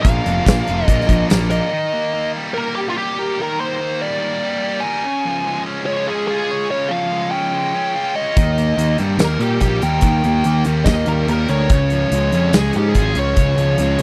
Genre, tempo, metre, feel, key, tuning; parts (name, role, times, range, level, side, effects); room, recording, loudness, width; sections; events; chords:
classic rock; 144 BPM; 4/4; straight; A4 = 439 Hz
fuzz lead guitar; melody; 0.0-14.0 s; F4 to Ab5; -23 LUFS; equal; wah, distortion
distorted electric guitar; riff; 0.0-14.0 s; Bb2 to Db5; -25 LUFS; equal; overdrive
huge arena drum kit; drums; 0.0-1.6, 8.4-14.0 s; hi-hat, kick drum, snare drum, tambourine; -20 LUFS; equal
fuzz picked electric bass; bass; 0.1-1.6, 8.4-14.0 s; F1 to Bb2; -20 LUFS; equal; overdrive
studio reverb; dry, close 1970s-style studio recording; -18 LUFS; mono
0.0-1.7 A section; 1.7-14.0 B section
half time 1.7-14.0
0.0 Bb; 1.7 Eb; 5.0 Db; 8.4 Eb; 11.7 Db